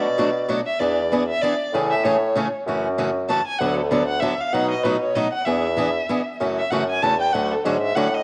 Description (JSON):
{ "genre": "acoustic string swing (jazz manouche)", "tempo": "193 BPM", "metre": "3/4", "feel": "swing 59% on 8ths", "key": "unclear", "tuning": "A4 = 441 Hz", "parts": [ { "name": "dark violin", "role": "second line", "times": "0.0-8.2 s", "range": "A4 to A5", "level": "-26 LUFS", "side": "equal", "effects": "none" }, { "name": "picked swing-style acoustic guitar", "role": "accompaniment", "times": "0.0-8.1 s", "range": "B2 to A4", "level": "-26 LUFS", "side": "equal", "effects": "none" }, { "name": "mellow bassoon", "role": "bass", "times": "0.0-8.2 s", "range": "D2 to B2", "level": "-26 LUFS", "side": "equal", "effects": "none" } ], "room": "moderate echo chamber reverb, RT60 1.7 s", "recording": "none", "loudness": "-22 LUFS", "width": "mono", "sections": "0.0-2.7 A section; 2.7-8.2 A section", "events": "violin solo 0.0-8.2", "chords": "0.0 Bm7; 0.8 E7; 1.7 Amaj7; 2.7 F#m7; 3.6 D6; 4.5 B7; 5.5 E7; 6.4 F#m7; 7.3 Dmaj7#11" }